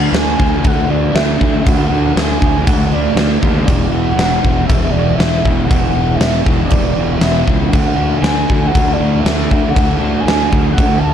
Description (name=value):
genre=rock, shoegaze and dream pop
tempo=118 BPM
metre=4/4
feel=straight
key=unclear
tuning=A4 = 441 Hz
part: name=pure sine lead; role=melody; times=0.0-11.1 s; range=D5 to A5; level=-20 LUFS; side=equal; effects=chorus, phaser, slapback echo
part: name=fuzz guitar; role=riff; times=0.0-11.1 s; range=E2 to D4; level=-17 LUFS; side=right 1 dB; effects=distortion, lush chorus
part: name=fuzz fingered electric bass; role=bass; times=0.0-11.1 s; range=E1 to D#2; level=-17 LUFS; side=equal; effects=overdrive
part: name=huge arena drum kit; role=drums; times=0.1-10.9 s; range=crash cymbal, kick drum, snare drum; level=-16 LUFS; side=equal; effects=none
room=little or no reverb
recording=dark, warm production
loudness=-11 LUFS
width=side -9 dB against mid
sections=0.0-11.1 A section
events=none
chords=0.0 D; 3.7 E5; 7.7 D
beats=0.12 0.63 1.14 | 1.65 2.15 2.66 3.16 | 3.67 4.18 4.68 5.19 | 5.69 6.20 6.71 7.21 | 7.72 8.23 8.73 9.24 | 9.75 10.26 10.76